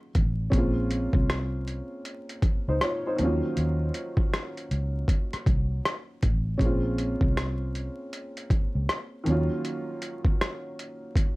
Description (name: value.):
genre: lo-fi hip hop.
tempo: 79 BPM.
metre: 4/4.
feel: swing 64% on 16ths.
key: Bb minor.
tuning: A4 = 438 Hz.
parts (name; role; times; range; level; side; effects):
dark upright piano; accompaniment; 0.0-11.4 s; Eb3 to Db5; -30 LUFS; equal; cassette tape.
boom bap sampler-style drum kit; drums; 0.1-11.4 s; hi-hat, kick drum, rim click; -25 LUFS; equal; overdrive, vintage 12-bit sampler grit.
vintage muted fingered electric bass; bass; 0.2-9.5 s; A1 to Eb2; -28 LUFS; equal; none.
room: light reverb.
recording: vinyl crackle.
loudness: -24 LUFS.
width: side -22 dB against mid.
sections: 0.0-11.4 A section.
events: none.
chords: 0.0 Ebm9; 0.5 Bbm9; 3.2 Ebm9; 6.6 Bbm9; 9.3 Ebm9.